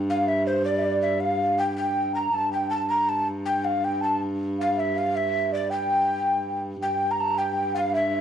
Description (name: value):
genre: medieval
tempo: 107 BPM (dotted quarters)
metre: 6/8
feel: straight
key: G dorian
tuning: A4 = 440 Hz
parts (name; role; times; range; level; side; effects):
- rich viola da gamba; drone; 0.0-8.2 s; G2; -29 LUFS; right 1 dB; stereo widening, cassette tape
- breathy mellow tenor recorder; melody; 0.1-8.2 s; C5 to Bb5; -26 LUFS; left 6 dB; none
- baroque flute; second line; 0.1-8.2 s; C5 to Bb5; -26 LUFS; right 5 dB; cassette tape, plate reverb
room: wet studio reverb, RT60 0.5 s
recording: home recording on cassette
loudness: -22 LUFS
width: side -9 dB against mid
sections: 0.0-6.8 A section; 6.8-8.2 B section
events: none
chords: none